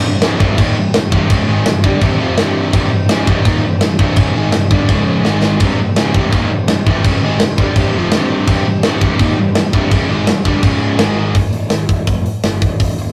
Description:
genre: heavy metal.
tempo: 167 BPM.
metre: 4/4.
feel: straight.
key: C minor.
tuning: A4 = 438 Hz.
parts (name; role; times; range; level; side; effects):
dark chamber string section; sustained chords; 0.0-11.4 s; Db3 to Ab5; -29 LUFS; equal; none.
biting overdriven guitar; riff; 0.0-11.4 s; C2 to Ab3; -21 LUFS; equal; none.
heavy high-gain guitar; riff; 0.0-11.4 s; C2 to Ab3; -24 LUFS; equal; distortion.
scooped high-gain guitar; riff; 0.0-11.4 s; C2 to Ab3; -24 LUFS; equal; distortion.
fuzz picked electric bass; bass; 0.0-13.1 s; C1 to Ab1; -23 LUFS; equal; overdrive.
tight metal drum kit; drums; 0.2-13.1 s; crash cymbal, hi-hat, kick drum, snare drum; -17 LUFS; equal; none.
room: light reverb.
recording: rough rehearsal-room recording.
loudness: -14 LUFS.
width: mono.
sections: 0.0-11.4 A section; 11.4-13.1 B section.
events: drum fill 5.2-5.6.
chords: 0.0 Cm; 4.9 Db5; 5.2 Ab5; 5.6 Cm; 10.6 Db5; 11.0 Ab5; 11.4 N.C..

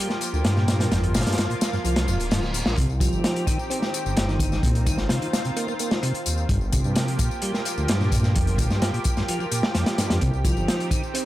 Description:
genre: breakbeat, breaks.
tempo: 129 BPM.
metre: 4/4.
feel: straight.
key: C minor.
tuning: A4 = 440 Hz.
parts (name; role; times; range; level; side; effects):
lush unison pad; sustained chords; 0.0-11.3 s; Eb3 to G4; -30 LUFS; equal; chorus, vintage 12-bit sampler grit, sidechain pumping.
mellow tonewheel organ; riff; 0.0-11.2 s; F2 to C4; -27 LUFS; equal; slow rotary speaker, tube saturation.
crunchy breakbeat drum kit; drums; 0.1-11.3 s; hi-hat, kick drum, snare drum; -24 LUFS; equal; none.
tambourine; drums; 0.1-11.2 s; none; -36 LUFS; left 8 dB; none.
detuned saw bass; bass; 0.3-10.7 s; D1 to G2; -25 LUFS; equal; none.
reverse cymbal; sound effects; 2.1-2.8 s; none; -35 LUFS; right 1 dB; none.
room: studio reverb.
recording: none.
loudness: -21 LUFS.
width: side -15 dB against mid.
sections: 0.0-11.3 A section.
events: kick drops out 1.8-2.8; reverse cymbal 2.1-2.8.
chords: 0.0 Gm7; 2.8 Cm; 6.5 Gm7; 10.2 Cm.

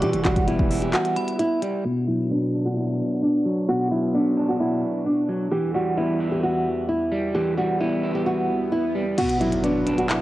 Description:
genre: hip hop, trap.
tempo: 131 BPM.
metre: 4/4.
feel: half-time.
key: B minor.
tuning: A4 = 441 Hz.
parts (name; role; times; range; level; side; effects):
nylon-string guitar; melody; 0.0-10.2 s; D4 to G4; -24 LUFS; equal; low-pass filter, cassette tape.
electric guitar at the edge of break-up; accompaniment; 0.0-10.2 s; B2 to E4; -24 LUFS; equal; low-pass filter, cassette tape.
warm analog pad; sustained chords; 0.0-10.2 s; E2 to B5; -35 LUFS; equal; lush chorus, low-pass filter, cassette tape.
growling 808-style bass; bass; 0.0-0.9 s; E1 to B2; -28 LUFS; equal; none.
minimal click drum kit; drums; 0.0-1.7, 9.2-10.2 s; crash cymbal, handclaps, hi-hat, kick drum; -26 LUFS; equal; none.
metallic FM bell; second line; 1.2-1.4 s; B5; -38 LUFS; equal; chorus, phaser, cassette tape, analog delay.
swell and impact; sound effects; 8.1-10.2 s; none; -33 LUFS; equal; none.
room: light reverb.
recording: home recording on cassette.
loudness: -20 LUFS.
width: side -15 dB against mid.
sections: 0.0-1.9 A section; 1.9-9.2 B section; 9.2-10.2 C section.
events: break 0.9-1.9; filter sweep 1.9-9.2; swell 8.1-9.2; kick muted 9.2-10.2; impact 9.2-10.2.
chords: 0.0 Emadd9; 1.9 Bm; 5.5 Emadd9; 9.2 Bm.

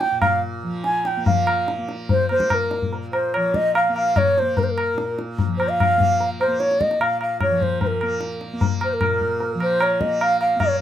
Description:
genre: indian classical, Hindustani.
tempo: 147 BPM.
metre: 4/4.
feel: straight.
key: Bb raga kafi.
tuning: A4 = 440 Hz.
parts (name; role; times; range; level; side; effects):
bansuri; melody; 0.0-10.8 s; Bb4 to Ab5; -20 LUFS; right 1 dB; none.
tanpura; drone; 0.0-10.8 s; Bb2 to Bb3; -30 LUFS; right 1 dB; none.
tabla; percussion; 0.0-10.8 s; none; -22 LUFS; left 4 dB; none.
room: light reverb.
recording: minimal, uncompressed stereo recording.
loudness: -18 LUFS.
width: side -10 dB against mid.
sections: 0.0-1.3 A section; 1.3-10.8 B section.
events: speeding up 0.0-10.8.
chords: none.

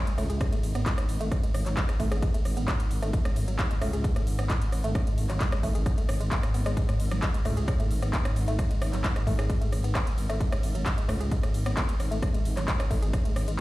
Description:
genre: driving peak-time techno.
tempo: 132 BPM.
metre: 4/4.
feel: straight.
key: unclear.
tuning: A4 = 440 Hz.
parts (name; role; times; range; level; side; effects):
swarming drone; drone; 0.2-13.6 s; G#2; -34 LUFS; equal; built-in reverb, sidechain pumping.
woody wave-folded pluck; riff; 0.1-13.5 s; F#3 to G#4; -35 LUFS; equal; chorus, sidechain pumping, tape echo.
techno drum kit; drums; 0.1-13.6 s; handclaps, hi-hat, ride cymbal, rim click; -34 LUFS; equal; overdrive.
growling FM bass; bass; 0.2-13.6 s; G#1 to C#2; -29 LUFS; equal; sidechain pumping.
electronic kick drum; drums; 0.4-13.2 s; none; -28 LUFS; equal; overdrive.
room: light reverb.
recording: played on a big sound system in a bare room, stone room reverb.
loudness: -25 LUFS.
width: side -18 dB against mid.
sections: 0.0-13.6 A section.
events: none.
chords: none.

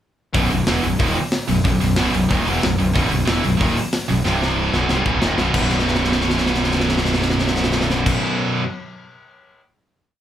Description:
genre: heavy metal.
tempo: 185 BPM.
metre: 4/4.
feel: straight.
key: unclear.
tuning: A4 = 438 Hz.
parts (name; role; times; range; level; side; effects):
scooped high-gain guitar; riff; 0.3-8.6 s; B1 to E3; -23 LUFS; left 6 dB; distortion.
scooped high-gain guitar; riff; 0.3-8.6 s; B1 to E3; -20 LUFS; right 4 dB; distortion.
fuzz fingered electric bass; bass; 0.3-8.1 s; B0 to E1; -24 LUFS; equal; overdrive.
tight metal drum kit; drums; 0.3-9.6 s; crash cymbal, hi-hat, kick drum, snare drum; -22 LUFS; equal; none.
room: moderate large studio reverb, RT60 0.9 s.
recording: band playing live in one room.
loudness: -16 LUFS.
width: side -11 dB against mid.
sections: 0.3-5.5 riff; 5.5-8.1 final chord.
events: drum fill 4.3-5.5, 5.7-8.1.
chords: 0.3 B; 4.3 C5; 4.7 B; 5.5 B5.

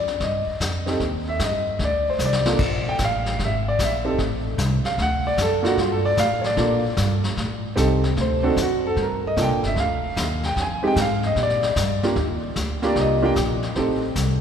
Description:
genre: jazz piano trio.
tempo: 150 BPM.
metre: 4/4.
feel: swing 67% on 8ths.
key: G minor.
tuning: A4 = 441 Hz.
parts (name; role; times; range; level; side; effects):
warm grand piano; melody; 0.0-14.0 s; Ab3 to Ab5; -22 LUFS; right 1 dB; none.
upright bass; bass; 0.0-14.4 s; G1 to Bb2; -24 LUFS; equal; none.
vintage brush drum kit; drums; 0.1-14.4 s; brushed snare drum, crash cymbal, hi-hat, kick drum, snare drum; -28 LUFS; left 2 dB; none.
room: wet church reverb, RT60 3.3 s.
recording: recorded in a church or concert hall.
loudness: -19 LUFS.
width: side -8 dB against mid.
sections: 0.0-9.0 A section; 9.0-14.4 A section.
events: grand piano solo 0.0-14.4; drum fill 2.2-2.6.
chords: 0.0 Eb; 1.8 D5; 2.6 Gm9 (rootless); 3.4 E; 4.2 Am; 5.0 D; 5.8 Gm9; 7.4 Am7b5; 8.2 D7; 9.0 Gm7; 10.6 Fm7; 11.4 Bb6; 12.2 Ebmaj7; 13.8 Am7b5.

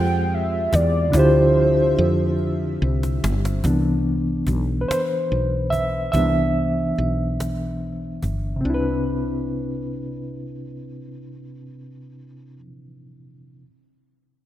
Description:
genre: slow six-eight R&B.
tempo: 48 BPM (dotted quarters).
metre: 6/8.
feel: straight.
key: C major.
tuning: A4 = 440 Hz.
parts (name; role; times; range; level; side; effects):
warm velvety synth lead; melody; 0.0-2.8 s; C5 to G5; -22 LUFS; left 1 dB; chorus.
reed electric piano; accompaniment; 0.0-13.7 s; C3 to E5; -22 LUFS; equal; fast tremolo.
chorused pulse-width pad; sustained chords; 0.0-3.6 s; F3 to E5; -34 LUFS; left 1 dB; none.
woody fretless electric bass; bass; 0.0-12.6 s; G1 to F2; -23 LUFS; equal; none.
cajon; drums; 0.7-8.4 s; none; -30 LUFS; equal; none.
room: moderate lush hall reverb, RT60 2.5 s.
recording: rough home demo mix.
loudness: -19 LUFS.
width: side -13 dB against mid.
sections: 0.0-3.6 A section; 3.6-8.6 B section; 8.6-11.1 C section.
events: drum fill 2.4-3.6; reed electric piano solo 3.6-8.6.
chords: 0.0 Fmadd9; 1.1 Dm11; 3.6 Cmaj7.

